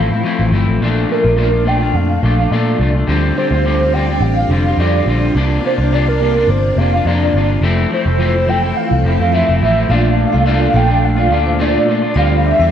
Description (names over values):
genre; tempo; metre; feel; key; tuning
indie pop; 106 BPM; 4/4; swing 55% on 16ths; Bb lydian; A4 = 441 Hz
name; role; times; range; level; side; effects
warbly nostalgic lead; melody; 0.0-12.7 s; Bb4 to G5; -18 LUFS; right 1 dB; ensemble chorus, slapback echo
electric guitar at the edge of break-up; accompaniment; 0.0-12.7 s; Bb2 to F4; -18 LUFS; left 3 dB; lush chorus, warbly pitch drift
phased string machine; sustained chords; 0.0-12.7 s; Bb2 to E5; -23 LUFS; right 1 dB; ensemble chorus, phaser
vintage muted picked electric bass; bass; 0.0-12.7 s; F1 to Bb2; -15 LUFS; equal; none
vibraphone with soft mallets; second line; 9.9-12.7 s; E4 to F5; -23 LUFS; right 5 dB; ensemble chorus, slapback echo
room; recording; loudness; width
moderate spring reverb, RT60 1.9 s, digital ambience; dark, warm production; -12 LUFS; side -9 dB against mid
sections
0.0-9.9 A section; 9.9-12.7 B section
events
none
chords
0.0 Fmaj7; 0.8 Bbmaj7; 3.1 Dm7; 5.3 C9sus4; 7.6 Fmaj7; 9.9 Bbmaj7; 12.2 Dm11